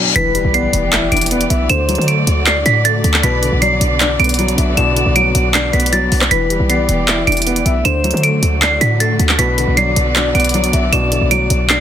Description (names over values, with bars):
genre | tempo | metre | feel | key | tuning
hip hop, trap | 156 BPM | 4/4 | half-time | E minor | A4 = 440 Hz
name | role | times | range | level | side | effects
dark baby grand piano | accompaniment | 0.0-11.8 s | B2 to D5 | -19 LUFS | left 1 dB | low-pass filter
reverse cymbal and impact | sound effects | 0.0-1.7 s | none | -21 LUFS | left 3 dB | none
delicate synth tine bell | melody | 0.2-11.8 s | A6 to E7 | -18 LUFS | right 3 dB | chorus, phaser, low-pass filter, ping-pong delay
breathy flute-like synth lead | second line | 0.2-11.3 s | B4 to E5 | -23 LUFS | left 5 dB | chorus, ping-pong delay
warm studio string section | sustained chords | 0.2-11.8 s | D3 to D5 | -24 LUFS | equal | none
short 808-style bass | bass | 0.2-11.8 s | E1 to D3 | -17 LUFS | equal | none
trap drum kit | drums | 0.2-11.8 s | handclaps, hi-hat, rim click | -17 LUFS | equal | overdrive
room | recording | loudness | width
little or no reverb | dense, heavily limited modern master | -12 LUFS | side -10 dB against mid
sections
0.2-11.8 A section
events
break 0.0; reverse cymbal 0.0; impact 0.2-1.7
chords
0.2 Em7; 1.7 D; 3.2 Bm; 6.3 Em7; 7.8 D; 9.4 Bm